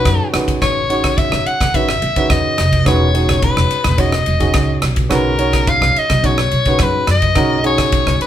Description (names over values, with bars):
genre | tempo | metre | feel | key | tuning
electric jazz fusion | 107 BPM | 4/4 | straight | B major | A4 = 440 Hz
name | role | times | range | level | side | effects
edgy soprano saxophone | melody | 0.0-8.3 s | A#4 to F#5 | -17 LUFS | left 2 dB | none
dark grand piano | accompaniment | 0.0-8.3 s | D#3 to C#5 | -20 LUFS | right 3 dB | none
upright bass | bass | 0.1-8.2 s | E1 to F#2 | -18 LUFS | equal | none
crisp fusion drum kit | drums | 0.1-8.3 s | kick drum, ride cymbal, rim click | -18 LUFS | equal | none
room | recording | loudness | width
moderate studio reverb, RT60 0.6 s | band playing live in one room | -12 LUFS | side -11 dB against mid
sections
0.0-8.3 A section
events
none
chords
0.3 Amaj9; 2.9 Emaj9; 5.1 Badd9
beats
0.05 | 0.61 1.17 1.74 2.30 | 2.86 3.42 3.99 4.55 | 5.11 5.67 6.24 6.80 | 7.36 7.92